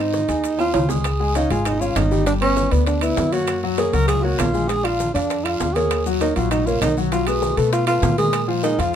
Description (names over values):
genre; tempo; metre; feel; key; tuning
Afro-Cuban jazz; 198 BPM; 4/4; straight; unclear; A4 = 438 Hz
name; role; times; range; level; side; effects
breathy tenor saxophone; melody; 0.0-9.0 s; B3 to Bb4; -21 LUFS; right 1 dB; none
warm concert grand piano; accompaniment; 0.0-9.0 s; F3 to Ab5; -24 LUFS; left 3 dB; none
upright bass; bass; 0.0-9.0 s; G1 to Cb3; -23 LUFS; equal; none
bongos; percussion; 0.1-8.8 s; none; -32 LUFS; left 6 dB; none
congas; percussion; 0.1-8.9 s; none; -30 LUFS; equal; none
guiro; percussion; 0.1-8.9 s; none; -36 LUFS; right 5 dB; none
maracas; percussion; 0.1-8.9 s; none; -39 LUFS; left 8 dB; none
timbales; percussion; 0.3-8.9 s; none; -28 LUFS; right 6 dB; none
claves; percussion; 0.6-8.5 s; none; -36 LUFS; right 9 dB; none
room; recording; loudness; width
light reverb; minimal, uncompressed stereo recording; -17 LUFS; side -9 dB against mid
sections
0.0-1.0 A section; 1.0-9.0 B section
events
drum fill 0.1-1.0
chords
0.0 Ab6; 1.0 Dbadd9; 2.3 G; 3.5 Gbmaj9; 4.7 Bb7; 5.9 Ebm7; 7.1 Cb5; 8.3 Bb5